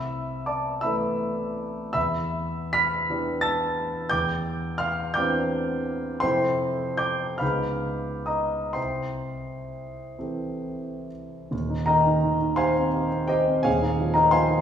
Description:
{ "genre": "classical, impressionist solo piano", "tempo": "40-60 BPM (dotted quarters)", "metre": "6/8", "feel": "rubato", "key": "C major, Eb major from 11.5 s", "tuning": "A4 = 440 Hz", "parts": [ { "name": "warm grand piano", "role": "solo", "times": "0.0-14.6 s", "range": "Eb1 to B6", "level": "-23 LUFS", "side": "equal", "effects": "none" } ], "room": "wet recital hall reverb, RT60 1.8 s", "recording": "heard from further back in the room, small room ambience", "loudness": "-23 LUFS", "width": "side -8 dB against mid", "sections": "0.0-11.5 A section; 11.5-14.6 B section", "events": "none", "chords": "0.0 Amadd9/C; 2.0 Em7; 4.1 Cadd9/E; 6.2 Fmaj7; 7.4 Db9; 8.8 C6; 11.5 Eb6; 13.7 Db69/Eb" }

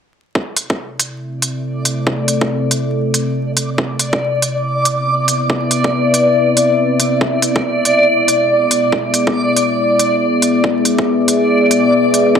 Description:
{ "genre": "deep dubstep", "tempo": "140 BPM", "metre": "4/4", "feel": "swing 62% on 16ths, half-time", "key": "A harmonic minor", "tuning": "A4 = 440 Hz", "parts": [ { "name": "deep dark ambient pad", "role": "sustained chords", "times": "1.0-12.4 s", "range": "B3 to E5", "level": "-16 LUFS", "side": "left 1 dB", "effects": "chorus, built-in reverb" }, { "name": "electronic kick drum", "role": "drums", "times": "0.4-12.4 s", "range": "none", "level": "-19 LUFS", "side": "equal", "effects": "high-pass filter on kick, high-pass filter on room" }, { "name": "backwards swelling texture", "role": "texture", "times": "2.2-12.4 s", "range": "D5", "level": "-16 LUFS", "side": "equal", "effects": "built-in reverb" }, { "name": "electronic hi-hat", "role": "drums", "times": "0.6-12.2 s", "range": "none", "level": "-17 LUFS", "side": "right 1 dB", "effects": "none" } ], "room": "moderate lush hall reverb, RT60 1.6 s", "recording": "vinyl crackle", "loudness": "-13 LUFS", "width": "side -7 dB against mid", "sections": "0.4-12.4 A section", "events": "filter sweep on ambient pad 0.4-12.4", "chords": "0.4 Am; 7.2 E" }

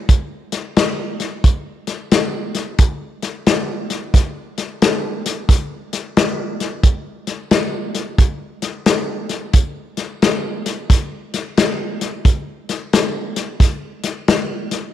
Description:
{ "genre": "blues", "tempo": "89 BPM", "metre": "4/4", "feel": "swing 64% on 8ths", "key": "none", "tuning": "none", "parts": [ { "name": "warm soul drum kit", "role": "drums", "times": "0.1-14.8 s", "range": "hi-hat, kick drum, snare drum", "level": "-16 LUFS", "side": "left 1 dB", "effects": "none" } ], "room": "moderate plate reverb, RT60 2.1 s", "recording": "1960s-style stereo", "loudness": "-16 LUFS", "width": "side -11 dB against mid", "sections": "0.1-14.9 A section", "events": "none", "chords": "none" }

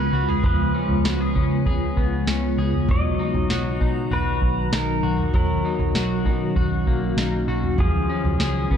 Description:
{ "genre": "dream pop", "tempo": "98 BPM", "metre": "4/4", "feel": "straight", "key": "unclear", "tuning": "A4 = 436 Hz", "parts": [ { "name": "pedal steel guitar", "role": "melody", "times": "0.0-8.8 s", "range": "Ab4 to Eb5", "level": "-28 LUFS", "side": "equal", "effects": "ping-pong delay" }, { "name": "ethereal airy pad", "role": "sustained chords", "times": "0.0-8.8 s", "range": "Db3 to Gb4", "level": "-25 LUFS", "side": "equal", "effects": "ensemble chorus, built-in reverb" }, { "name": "electric guitar at the edge of break-up", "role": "arpeggios", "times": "0.0-8.8 s", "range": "F3 to Ab4", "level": "-28 LUFS", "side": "left 3 dB", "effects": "lush chorus, ping-pong delay" }, { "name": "vintage muted picked electric bass", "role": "bass", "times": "0.0-8.8 s", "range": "Cb2 to Db3", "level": "-25 LUFS", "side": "equal", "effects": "none" }, { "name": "soft vintage rhythm box", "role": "drums", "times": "0.3-8.8 s", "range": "kick drum, snare drum, toms", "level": "-24 LUFS", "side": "right 1 dB", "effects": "none" } ], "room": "light reverb", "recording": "dark, warm production", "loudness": "-19 LUFS", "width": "side -8 dB against mid", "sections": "0.0-8.8 A section", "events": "none", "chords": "0.0 Db7; 2.9 Cbmaj7; 7.8 Db7" }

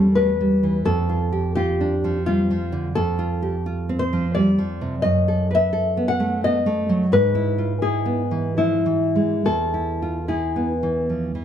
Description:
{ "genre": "romantic duo for nylon-string guitar and classical guitar", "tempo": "66-88 BPM", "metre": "3/4", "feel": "rubato", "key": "unclear", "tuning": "A4 = 435 Hz", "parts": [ { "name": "nylon-string guitar", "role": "melody", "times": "0.0-11.1 s", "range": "E4 to F#5", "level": "-23 LUFS", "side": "left 3 dB", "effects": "none" }, { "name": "nylon-string guitar", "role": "accompaniment", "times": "0.0-11.4 s", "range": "E2 to B4", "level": "-21 LUFS", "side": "right 2 dB", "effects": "none" } ], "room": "light reverb", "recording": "close, detailed microphones", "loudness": "-19 LUFS", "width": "side -9 dB against mid", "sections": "0.0-11.4 A section", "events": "none", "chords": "0.0 C#dim/E (rootless); 0.9 Dm/F; 3.0 F; 5.0 B7/F#; 7.1 E/G#; 9.5 E" }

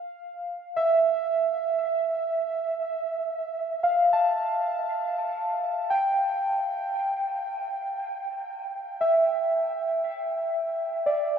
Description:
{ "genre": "ambient", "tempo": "58 BPM", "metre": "3/4", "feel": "straight", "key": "unclear", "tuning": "A4 = 440 Hz", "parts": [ { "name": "muted felt-like synth keys", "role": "solo", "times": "0.0-11.4 s", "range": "D5 to A5", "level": "-24 LUFS", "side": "right 1 dB", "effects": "chorus, dub echo" } ], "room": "wet spring reverb, RT60 2.5 s", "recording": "echo-heavy mix", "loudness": "-24 LUFS", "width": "side -7 dB against mid", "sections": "0.0-11.4 A section", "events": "none", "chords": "0.0 Dmadd9 (rootless); 5.9 Dsus4 (rootless)" }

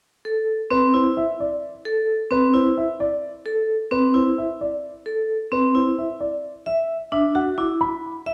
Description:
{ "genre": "classical, minimalist pattern music", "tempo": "262 BPM (eighths)", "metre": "7/8", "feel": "straight", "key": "A dorian", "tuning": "A4 = 440 Hz", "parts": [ { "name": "vibraphone with hard mallets", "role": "arpeggios", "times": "0.3-8.3 s", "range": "C4 to E5", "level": "-23 LUFS", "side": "equal", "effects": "none" }, { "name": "dark concert grand piano", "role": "melody", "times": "0.7-8.3 s", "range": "B4 to D6", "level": "-27 LUFS", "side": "equal", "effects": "none" } ], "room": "moderate recital hall reverb, RT60 1.5 s", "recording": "dark, warm production", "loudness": "-22 LUFS", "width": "mono", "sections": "0.0-8.3 A section", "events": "none", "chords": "0.0 Am; 6.4 Bm (rootless)" }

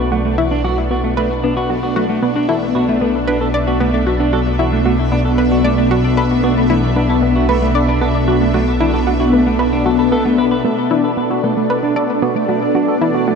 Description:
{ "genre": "ambient, sequencer-driven space music", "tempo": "114 BPM", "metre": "4/4", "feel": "straight", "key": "B minor", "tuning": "A4 = 442 Hz", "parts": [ { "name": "phased string machine", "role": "sustained chords", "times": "0.0-13.4 s", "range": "B2 to A4", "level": "-17 LUFS", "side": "left 1 dB", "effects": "ensemble chorus, phaser" }, { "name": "semi-hollow electric guitar", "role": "arpeggios", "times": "0.0-13.4 s", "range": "A3 to B4", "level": "-20 LUFS", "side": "moving between left 2 dB and right 5 dB", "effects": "auto-pan, low-pass filter, ping-pong delay" }, { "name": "fat analog bass", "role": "bass", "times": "0.0-10.6 s", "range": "B1", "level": "-20 LUFS", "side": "equal", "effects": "none" }, { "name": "bubbling stepped-filter texture", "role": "texture", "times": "0.0-13.4 s", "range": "D4 to E5", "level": "-25 LUFS", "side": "right 1 dB", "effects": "chorus, built-in reverb" }, { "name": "analog pluck", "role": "riff", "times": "0.1-13.4 s", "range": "B3 to D5", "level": "-20 LUFS", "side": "left 1 dB", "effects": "chorus, ping-pong delay" } ], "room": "wet huge ambient reverb, RT60 8.1 s", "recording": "dark, warm production", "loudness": "-13 LUFS", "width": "side -5 dB against mid", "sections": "0.0-10.6 A section; 10.6-13.4 B section", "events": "fade-in on string machine 0.0-10.6; fade-in on synth texture 0.0-10.6; filter sweep on clean electric guitar 10.6-13.4", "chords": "0.0 Bm7" }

